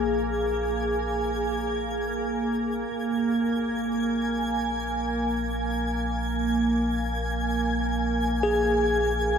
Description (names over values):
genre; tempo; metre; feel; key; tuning
ambient; free time; none; none; unclear; A4 = 439 Hz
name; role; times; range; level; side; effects
bell-like tine electric piano; arpeggios; 0.0-9.4 s; Ab4; -28 LUFS; equal; medium stereo tremolo, ping-pong delay
warm sub bass; bass; 0.0-9.4 s; Bb1; -33 LUFS; left 1 dB; none
organ-like drone; drone; 0.0-9.4 s; Bb3; -27 LUFS; right 2 dB; ensemble chorus, built-in reverb
twinkling granular texture; texture; 0.0-9.4 s; Ab5 to Ab6; -31 LUFS; equal; built-in reverb
room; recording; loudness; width
wet cathedral reverb, RT60 5.8 s; none; -24 LUFS; side -7 dB against mid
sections
0.0-9.4 A section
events
fade-in on synth texture 0.0-9.4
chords
0.0 Bb5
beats
free time